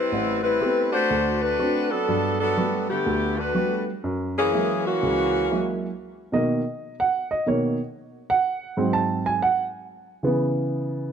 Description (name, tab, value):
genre	jazz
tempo	122 BPM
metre	4/4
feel	swing 67% on 8ths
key	B major from 6.0 s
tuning	A4 = 440 Hz
part	mellow saxophone section	melody	0.0-5.8 s	D3 to C5	-22 LUFS	left 1 dB	none
part	warm upright piano	accompaniment	0.1-11.1 s	A1 to A5	-24 LUFS	right 2 dB	none
room	light reverb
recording	dark, warm production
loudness	-21 LUFS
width	side -7 dB against mid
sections	0.0-6.0 A section; 6.0-11.1 B section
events	upright piano solo 6.0-11.1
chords	0.1 Am9; 1.1 D7; 2.1 Gmaj9; 4.0 F#9; 6.0 Bmaj7; 8.0 G#7; 9.9 C#m7